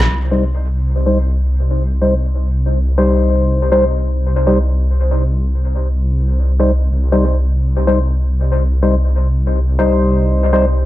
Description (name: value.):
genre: dubstep.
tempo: 141 BPM.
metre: 4/4.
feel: half-time.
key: C minor.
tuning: A4 = 440 Hz.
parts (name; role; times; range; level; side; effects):
dark detuned saw bass; bass; 0.0-10.9 s; C2; -14 LUFS; equal; none.
percussive organ stab; stabs; 0.3-10.7 s; G3 to C5; -17 LUFS; left 2 dB; wide subtle chorus, dub echo.
room: light reverb, digital ambience.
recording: echo-heavy mix.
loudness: -13 LUFS.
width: side -15 dB against mid.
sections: 0.1-10.9 A section.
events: filter sweep on synth stab 0.1-10.9.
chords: 0.1 Cm.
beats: | 0.10 0.53 0.95 1.38 | 1.80 2.23 2.66 3.08 | 3.51 3.93 4.36 4.78 | 5.21 5.63 6.06 6.49 | 6.91 7.34 7.76 8.19 | 8.61 9.04 9.46 9.89 | 10.31 10.74.